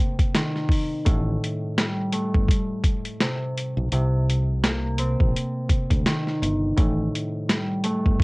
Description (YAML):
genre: hip hop, boom-bap hip-hop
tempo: 84 BPM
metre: 4/4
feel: swing 57% on 16ths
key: A minor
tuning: A4 = 436 Hz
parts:
  - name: concert harp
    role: accompaniment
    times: 0.0-8.2 s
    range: A2 to C4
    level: -26 LUFS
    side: equal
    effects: high-pass filter, low-pass filter, cassette tape
  - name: boom bap sampler-style drum kit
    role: drums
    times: 0.2-8.2 s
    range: hi-hat, kick drum, snare drum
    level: -22 LUFS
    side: equal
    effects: cassette tape
  - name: fingered electric bass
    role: bass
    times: 1.1-8.2 s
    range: G1 to D2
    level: -24 LUFS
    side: equal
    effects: none
room: light reverb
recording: home recording on cassette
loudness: -21 LUFS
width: side -26 dB against mid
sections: 0.0-8.2 A section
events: break 0.0-1.1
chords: 0.0 Cm7; 1.1 Am7; 3.9 Cm7; 6.8 Am7